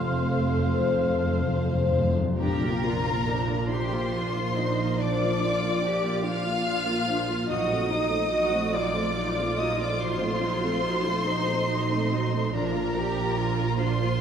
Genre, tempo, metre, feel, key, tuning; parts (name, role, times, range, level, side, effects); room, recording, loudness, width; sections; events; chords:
classical, slow romantic movement for symphony orchestra; 40-49 BPM (dotted quarters); 12/8; rubato; Bb major; A4 = 440 Hz
rich chamber violin section; melody; 0.0-14.2 s; F5 to F6; -32 LUFS; left 4 dB
clear oboe; second line; 0.0-1.6 s; F5; -36 LUFS; right 1 dB
mellow hollow concert flute; second line; 0.0-0.9 s; C6; -38 LUFS; equal
rich chamber violin section; second line; 0.0-14.2 s; Bb4 to F5; -31 LUFS; equal
warm studio viola section; accompaniment; 0.0-14.2 s; F3 to F4; -30 LUFS; equal
dark French horn section; sustained chords; 0.0-2.1 s; A3 to F4; -37 LUFS; right 2 dB
concert harp; arpeggios; 0.0-14.2 s; F2 to A5; -33 LUFS; left 3 dB
rich chamber cello section; bass; 0.0-14.2 s; F2 to G4; -32 LUFS; right 2 dB
rich symphonic double bass section; bass; 0.0-14.2 s; F1 to Bb1; -31 LUFS; right 4 dB
timpani; percussion; 0.0-13.8 s; F2 to Bb2; -30 LUFS; left 1 dB
wet recital hall reverb, RT60 1.8 s; heard from further back in the room; -23 LUFS; side -8 dB against mid
0.0-2.4 A section; 2.4-14.2 B section
timpani fill 0.0-2.4
0.0 F; 2.4 Bb; 7.5 Adim7/Bb; 12.5 Bb